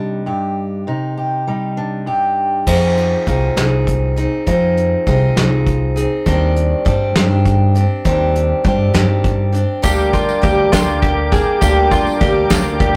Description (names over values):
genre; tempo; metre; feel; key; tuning
indie folk with a building arrangement; 67 BPM (dotted quarters); 6/8; straight; C minor; A4 = 441 Hz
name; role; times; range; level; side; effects
fingerpicked steel-string acoustic guitar; accompaniment; 0.0-2.7 s; G2 to G4; -20 LUFS; equal; none
picked steel-string acoustic guitar; accompaniment; 2.7-13.0 s; D3 to Ab4; -20 LUFS; equal; none
upright bass; bass; 2.7-13.0 s; C2 to G2; -19 LUFS; equal; none
soft brush drum kit; drums; 2.7-12.9 s; crash cymbal, hi-hat, kick drum, snare drum; -20 LUFS; equal; none
dark upright piano; accompaniment; 9.8-13.0 s; D2 to D5; -28 LUFS; equal; none
tonewheel organ; sustained chords; 9.8-13.0 s; Bb4 to D6; -24 LUFS; equal; chorus vibrato
mandolin; arpeggios; 9.8-13.0 s; F4 to Ab4; -20 LUFS; equal; none
tambourine; percussion; 9.8-12.6 s; none; -34 LUFS; equal; none
room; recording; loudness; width
light reverb; rough rehearsal-room recording, tube saturation; -16 LUFS; mono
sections
0.0-2.7 A section; 2.7-13.0 B section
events
build-up 2.7-13.0; drum fill 2.7-13.0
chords
0.0 Cmadd9; 2.7 Fm7; 6.3 Cmadd9/Eb; 9.8 Gm/D